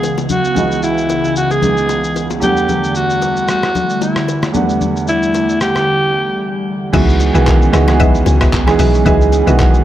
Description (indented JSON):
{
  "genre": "amapiano",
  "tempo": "113 BPM",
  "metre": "4/4",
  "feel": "swing 55% on 16ths",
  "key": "unclear",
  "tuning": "A4 = 439 Hz",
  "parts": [
    { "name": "growling alto saxophone", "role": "melody", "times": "0.0-6.6 s", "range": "E4 to G#4", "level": "-16 LUFS", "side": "equal", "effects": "digital delay" },
    { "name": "clear baby grand piano", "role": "accompaniment", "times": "0.0-9.8 s", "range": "C#2 to F#5", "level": "-17 LUFS", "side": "right 4 dB", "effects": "none" },
    { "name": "hollow soft pad", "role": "sustained chords", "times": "0.0-9.8 s", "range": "C#3 to F#5", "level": "-21 LUFS", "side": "left 1 dB", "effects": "ensemble chorus, sidechain pumping" },
    { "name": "lo-fi sampler-style drum kit", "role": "drums", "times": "0.0-9.8 s", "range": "crash cymbal, handclaps, hi-hat, kick drum, rim click, shaker", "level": "-18 LUFS", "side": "equal", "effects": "none" },
    { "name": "bongos and congas", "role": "percussion", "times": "0.0-9.7 s", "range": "none", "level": "-23 LUFS", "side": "left 7 dB", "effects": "none" },
    { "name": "mallet-like synth pluck", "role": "stabs", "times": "6.9-9.8 s", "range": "F#4 to E5", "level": "-21 LUFS", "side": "left 4 dB", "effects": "chorus, digital delay" },
    { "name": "deep log drum bass", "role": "bass", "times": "6.9-9.8 s", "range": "B1 to C#2", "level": "-13 LUFS", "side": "equal", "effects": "none" }
  ],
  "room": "light reverb, digital ambience",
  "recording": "dark, warm production",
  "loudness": "-11 LUFS",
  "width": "side -12 dB against mid",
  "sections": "0.0-6.9 A section; 6.9-9.8 B section",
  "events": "break 5.9-6.9; drop 6.9-9.8",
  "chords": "0.0 C#m11; 2.4 Em11; 6.9 C#m11"
}